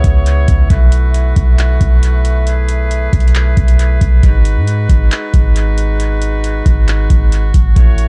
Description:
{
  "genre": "hip hop, atmospheric cloud-rap",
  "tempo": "136 BPM",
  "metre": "4/4",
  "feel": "half-time",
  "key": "unclear",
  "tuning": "A4 = 443 Hz",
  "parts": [
    { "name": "clear woodwind section", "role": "sustained chords", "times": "0.0-8.1 s", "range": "G#3 to C#5", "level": "-24 LUFS", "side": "equal", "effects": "sidechain pumping" },
    { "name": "clean 808-style bass", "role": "bass", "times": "0.0-8.1 s", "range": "G#1 to G#2", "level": "-14 LUFS", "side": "equal", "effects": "none" },
    { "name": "booming analog drum machine", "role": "drums", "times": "0.0-8.1 s", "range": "handclaps, hi-hat, kick drum", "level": "-15 LUFS", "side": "equal", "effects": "none" }
  ],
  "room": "digital ambience",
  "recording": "echo-heavy mix",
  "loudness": "-12 LUFS",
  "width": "mono",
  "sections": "0.0-8.1 A section",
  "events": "none",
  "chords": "0.0 C#m7; 0.7 B7sus4; 4.2 G#m7"
}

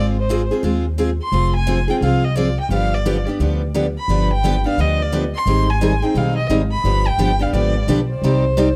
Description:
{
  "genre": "acoustic string swing (jazz manouche)",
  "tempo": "174 BPM",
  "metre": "4/4",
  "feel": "swing 61% on 8ths",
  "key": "unclear",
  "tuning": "A4 = 442 Hz",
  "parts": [
    { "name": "warm violin", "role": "melody", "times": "0.0-8.8 s", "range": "C5 to C6", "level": "-25 LUFS", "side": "equal", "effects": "tape echo" },
    { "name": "picked steel-string acoustic guitar", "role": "accompaniment", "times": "0.0-8.7 s", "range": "C3 to D5", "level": "-24 LUFS", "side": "equal", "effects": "none" },
    { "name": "picked steel-string acoustic guitar", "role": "accompaniment", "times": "0.0-8.7 s", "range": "C3 to D5", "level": "-27 LUFS", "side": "equal", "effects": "none" },
    { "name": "upright bass", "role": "bass", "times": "0.0-8.8 s", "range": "F1 to Eb2", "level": "-22 LUFS", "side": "equal", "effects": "none" }
  ],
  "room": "studio reverb",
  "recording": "dry, close 1970s-style studio recording",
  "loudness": "-18 LUFS",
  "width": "mono",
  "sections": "0.0-8.8 A section",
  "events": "none",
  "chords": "0.0 Ab6; 1.3 Fm; 2.7 G7; 5.5 Abmaj7; 6.8 G7; 8.2 Cmadd9"
}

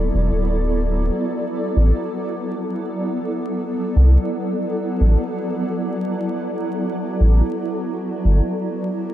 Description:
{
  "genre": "ambient dub",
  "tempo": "74 BPM",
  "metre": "4/4",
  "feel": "swing 58% on 16ths",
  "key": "unclear",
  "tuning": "A4 = 441 Hz",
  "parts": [
    { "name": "granular cloud pad", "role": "sustained chords", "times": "0.0-9.1 s", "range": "F#3 to D5", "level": "-22 LUFS", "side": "equal", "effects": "built-in reverb" },
    { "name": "round analog bass", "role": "bass", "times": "0.0-8.4 s", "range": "D1 to C2", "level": "-15 LUFS", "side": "equal", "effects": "none" }
  ],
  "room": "moderate echo chamber reverb, RT60 1.8 s",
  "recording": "vinyl crackle",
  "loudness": "-18 LUFS",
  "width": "side -12 dB against mid",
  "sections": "0.0-1.1 A section; 1.1-9.1 B section",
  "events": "none",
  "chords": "0.0 G69 (rootless); 1.1 Asus2; 7.6 G69 (rootless)"
}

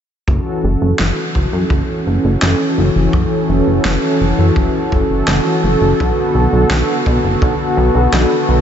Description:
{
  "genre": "synthwave",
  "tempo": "84 BPM",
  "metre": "4/4",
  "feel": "straight",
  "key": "F# minor",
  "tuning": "A4 = 436 Hz",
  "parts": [
    { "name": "brassy analog pad", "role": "sustained chords", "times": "0.3-8.6 s", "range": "D3 to A4", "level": "-15 LUFS", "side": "equal", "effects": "chorus, tremolo, vintage 12-bit sampler grit, sidechain pumping" },
    { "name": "chorused synth bass", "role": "bass", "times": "0.3-8.6 s", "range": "F#1 to F#2", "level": "-16 LUFS", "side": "equal", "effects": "sidechain pumping" },
    { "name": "kick drum", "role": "drums", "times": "0.3-7.6 s", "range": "none", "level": "-18 LUFS", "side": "equal", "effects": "none" },
    { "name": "electronic snare drum", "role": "drums", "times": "1.0-8.3 s", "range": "none", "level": "-22 LUFS", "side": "equal", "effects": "overdrive" }
  ],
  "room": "moderate huge ambient reverb, RT60 7.9 s",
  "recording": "dreamy mix soaked in reverb, nothing above 7.8 kHz",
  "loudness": "-12 LUFS",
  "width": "side -8 dB against mid",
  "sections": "0.3-8.6 A section",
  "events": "filter sweep on analog synth bass 0.3-8.6",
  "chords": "0.3 F#m7; 6.0 Bm7"
}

